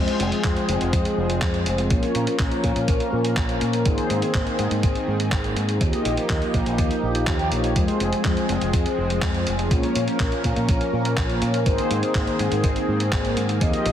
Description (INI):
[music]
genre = italo disco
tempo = 123 BPM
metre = 4/4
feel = straight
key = unclear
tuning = A4 = 440 Hz
[part]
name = warm analog pad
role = sustained chords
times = 0.0-13.9 s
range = Eb3 to Bb4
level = -25 LUFS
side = equal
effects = chorus, vintage 12-bit sampler grit
[part]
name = mellow synth brass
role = stabs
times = 0.0-13.9 s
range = Ab3 to G5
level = -27 LUFS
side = left 2 dB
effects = chorus, ping-pong delay
[part]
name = fingered electric bass with an envelope filter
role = bass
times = 0.0-13.9 s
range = F1 to Bb2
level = -26 LUFS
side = equal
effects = none
[part]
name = dusty soul sampler-style drum kit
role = drums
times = 0.1-13.9 s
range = handclaps, hi-hat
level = -29 LUFS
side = equal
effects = none
[part]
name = electronic kick drum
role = drums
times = 0.4-13.7 s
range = none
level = -23 LUFS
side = equal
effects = none
[sound]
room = moderate plate reverb, RT60 2.2 s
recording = heavily compressed radio sound, multiband compression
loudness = -20 LUFS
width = side -10 dB against mid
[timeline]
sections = 0.0-13.9 A section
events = none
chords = 0.0 Fm; 1.9 Bbm; 3.9 Abadd9; 5.8 Ebadd9; 7.8 Fm; 9.7 Bbm; 11.7 Abadd9